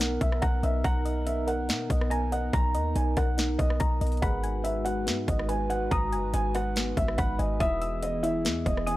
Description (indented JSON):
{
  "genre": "hip hop, atmospheric cloud-rap",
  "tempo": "142 BPM",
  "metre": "4/4",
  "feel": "half-time",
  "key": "B major",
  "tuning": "A4 = 439 Hz",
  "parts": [
    { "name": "felt-muted upright piano", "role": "melody", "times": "0.0-9.0 s", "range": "D#5 to A#5", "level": "-32 LUFS", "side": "right 1 dB", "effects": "low-pass filter, analog delay" },
    { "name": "dark analog pad", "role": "sustained chords", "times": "0.0-9.0 s", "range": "E3 to B4", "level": "-33 LUFS", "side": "equal", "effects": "chorus, sidechain pumping" },
    { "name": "soft round pluck", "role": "arpeggios", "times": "0.0-9.0 s", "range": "B3 to E6", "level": "-35 LUFS", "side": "left 2 dB", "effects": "chorus, low-pass filter, analog delay" },
    { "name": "clean 808-style bass", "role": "bass", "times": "0.0-9.0 s", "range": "E1 to B2", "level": "-29 LUFS", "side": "equal", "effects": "none" },
    { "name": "trap drum kit", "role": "drums", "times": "0.0-9.0 s", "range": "hi-hat, kick drum, rim click, snare drum", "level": "-30 LUFS", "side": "equal", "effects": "overdrive" },
    { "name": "downlifter", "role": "sound effects", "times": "0.0-0.8 s", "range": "none", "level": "barely audible", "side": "none", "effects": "none" },
    { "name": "celesta", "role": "texture", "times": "0.0-9.0 s", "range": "E4 to F#5", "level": "-41 LUFS", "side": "equal", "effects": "none" }
  ],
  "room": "little or no reverb",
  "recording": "dry, gritty hardware recording",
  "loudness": "-25 LUFS",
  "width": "side -16 dB against mid",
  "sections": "0.0-9.0 A section",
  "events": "none",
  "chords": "0.0 Bmaj7; 4.2 G#m7; 7.6 Emaj7"
}